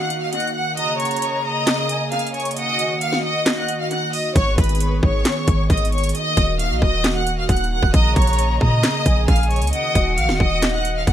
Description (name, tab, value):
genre	hip hop, trap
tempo	134 BPM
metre	4/4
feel	half-time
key	Eb minor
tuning	A4 = 440 Hz
part	warm symphonic violin section	melody	0.0-11.1 s	Cb5 to Gb6	-22 LUFS	left 1 dB	analog delay
part	concert flute	second line	0.0-3.9, 7.9-11.0 s	Eb5 to Bb5	-26 LUFS	equal	analog delay
part	warm analog pad	sustained chords	0.0-11.1 s	Db3 to Ab4	-27 LUFS	right 2 dB	wide subtle chorus
part	trap drum kit	drums	0.1-11.1 s	handclaps, hi-hat, kick drum, snare drum	-20 LUFS	equal	overdrive
part	warm 808-style bass	bass	4.4-11.1 s	Eb1 to Bb2	-20 LUFS	equal	none
room	digital ambience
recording	echo-heavy mix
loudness	-17 LUFS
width	side -11 dB against mid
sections	0.0-11.1 A section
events	break 0.0-4.4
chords	0.0 Ebm; 0.8 Bbm7; 2.6 Ebm; 4.4 Abm; 6.1 Ebm; 7.9 Bbm7; 9.7 Ebm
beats	0.33 | 0.77 1.22 1.67 2.12 | 2.56 3.01 3.46 3.91 | 4.36 4.80 5.25 5.70 | 6.15 6.59 7.04 7.49 | 7.94 8.39 8.83 9.28 | 9.73 10.18 10.62 11.07